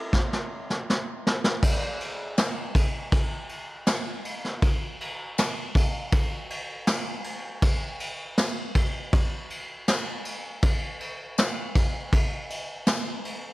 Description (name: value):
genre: rock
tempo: 80 BPM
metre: 4/4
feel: straight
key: none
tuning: none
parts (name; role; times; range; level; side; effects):
- vintage brush drum kit; drums; 0.1-13.4 s; crash cymbal, kick drum, snare drum; -25 LUFS; equal; none
- tambourine; percussion; 2.4-13.0 s; none; -37 LUFS; left 8 dB; none
room: little or no reverb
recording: dark, warm production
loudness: -24 LUFS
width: side -18 dB against mid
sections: 0.0-1.6 A section; 1.6-13.5 B section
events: drum fill 0.1-1.6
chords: none